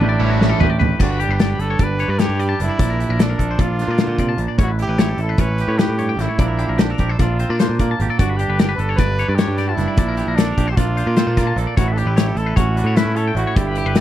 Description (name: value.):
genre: math rock and midwest emo.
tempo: 301 BPM (eighths).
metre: 9/8.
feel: straight.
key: unclear.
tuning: A4 = 440 Hz.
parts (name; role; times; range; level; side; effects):
bright trumpet; melody; 0.0-14.0 s; D4 to B4; -25 LUFS; right 2 dB; none.
twangy electric guitar; accompaniment; 0.0-14.0 s; G2 to A4; -25 LUFS; right 5 dB; none.
twangy electric guitar; arpeggios; 0.0-14.0 s; F#4 to A5; -27 LUFS; left 9 dB; none.
modern bright picked electric bass; bass; 0.0-14.0 s; F#1 to Bb2; -20 LUFS; equal; none.
loose indie drum kit; drums; 0.0-14.0 s; crash cymbal, hi-hat, kick drum, snare drum, toms; -18 LUFS; left 1 dB; none.
crunchy overdriven guitar; riff; 0.2-0.7 s; E3 to E4; -20 LUFS; right 2 dB; none.
room: little or no reverb.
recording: none.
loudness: -15 LUFS.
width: side -12 dB against mid.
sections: 1.0-14.0 A section.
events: drum fill 0.0-1.0.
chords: 0.0 A9sus4; 1.0 G; 2.8 Bbmaj7; 4.6 A9; 6.4 Bbmaj7; 8.2 G; 10.0 Bbmaj7; 11.8 A9.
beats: 0.00 0.20 0.40 0.60 0.80 | 1.00 1.20 1.40 1.60 1.80 2.00 2.20 2.40 2.60 | 2.80 3.00 3.20 3.40 3.60 3.80 4.00 4.20 4.40 | 4.60 4.79 5.00 5.20 5.39 5.59 5.79 5.99 6.19 | 6.39 6.59 6.79 6.99 7.19 7.39 7.59 7.79 7.99 | 8.19 8.39 8.59 8.79 8.99 9.19 9.39 9.59 9.79 | 9.98 10.18 10.38 10.58 10.78 10.98 11.18 11.38 11.58 | 11.78 11.98 12.18 12.38 12.57 12.77 12.97 13.17 13.37 | 13.57 13.77 13.97.